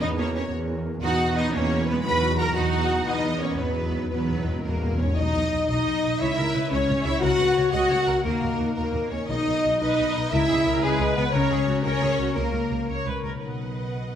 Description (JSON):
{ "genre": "cinematic, heroic adventure film score", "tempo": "117 BPM (dotted quarters)", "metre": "6/8", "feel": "straight", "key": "B major from 5.2 s", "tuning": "A4 = 439 Hz", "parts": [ { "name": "warm symphonic violin section", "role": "melody", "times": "0.0-14.2 s", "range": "G#4 to B5", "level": "-33 LUFS", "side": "left 4 dB", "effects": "none" }, { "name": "warm symphonic violin section", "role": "second line", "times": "0.0-14.2 s", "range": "G#4 to B5", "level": "-31 LUFS", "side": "left 1 dB", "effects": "none" }, { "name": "warm symphonic viola section", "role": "accompaniment", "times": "0.0-14.2 s", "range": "F#3 to D#5", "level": "-32 LUFS", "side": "right 2 dB", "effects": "none" }, { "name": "concert harp", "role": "arpeggios", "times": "0.0-14.2 s", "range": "B2 to A#5", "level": "-31 LUFS", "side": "left 7 dB", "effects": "none" }, { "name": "dark studio double bass section", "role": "bass", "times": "0.0-14.2 s", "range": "B1 to E2", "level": "-28 LUFS", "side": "right 3 dB", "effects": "none" }, { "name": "warm symphonic cello section", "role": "bass", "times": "0.0-14.2 s", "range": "B2 to B4", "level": "-30 LUFS", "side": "right 3 dB", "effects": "none" }, { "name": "timpani", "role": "percussion", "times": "3.1-5.1, 9.3-9.8 s", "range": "E2 to B2", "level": "-30 LUFS", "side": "left 1 dB", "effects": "none" }, { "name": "warm French horn section", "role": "sustained chords", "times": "4.6-12.9 s", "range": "G#3 to F#4", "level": "-25 LUFS", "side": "left 1 dB", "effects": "none" } ], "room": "wet scoring stage reverb, RT60 1.5 s", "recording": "none", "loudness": "-21 LUFS", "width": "side -9 dB against mid", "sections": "0.0-5.2 A section; 5.2-13.4 B section", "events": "timpani fill 3.1-5.2", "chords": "0.0 F#/E; 1.0 B/E; 5.2 B; 6.2 C#m; 7.2 F#/C#; 8.2 D#m; 9.3 B; 10.3 C#m; 11.3 F#/C#; 13.4 B" }